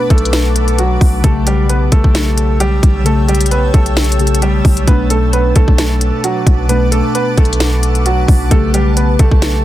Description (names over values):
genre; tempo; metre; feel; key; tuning
hip hop, trap; 132 BPM; 4/4; half-time; B minor; A4 = 440 Hz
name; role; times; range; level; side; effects
warm concert grand piano; melody; 0.0-9.6 s; F#3 to B4; -18 LUFS; right 2 dB; low-pass filter
muted felt-like synth keys; accompaniment; 0.0-9.6 s; B2 to G4; -19 LUFS; left 3 dB; chorus, low-pass filter
granular cloud pad; sustained chords; 0.0-9.6 s; B4 to E6; -23 LUFS; left 1 dB; built-in reverb
hard-hitting 808-style bass; bass; 0.1-9.6 s; B1; -14 LUFS; equal; none
trap drum kit; drums; 0.1-9.5 s; hi-hat, kick drum, snare drum; -12 LUFS; equal; none
room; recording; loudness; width
little or no reverb; dense, heavily limited modern master; -10 LUFS; side -14 dB against mid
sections
0.0-9.6 A section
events
none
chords
0.0 Bm7; 1.2 A7/B; 4.9 Bm7; 8.5 A7/B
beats
0.33 0.79 | 1.24 1.69 2.15 2.60 | 3.06 3.51 3.97 4.42 | 4.88 5.33 5.79 6.24 | 6.69 7.15 7.60 8.06 | 8.51 8.97 9.42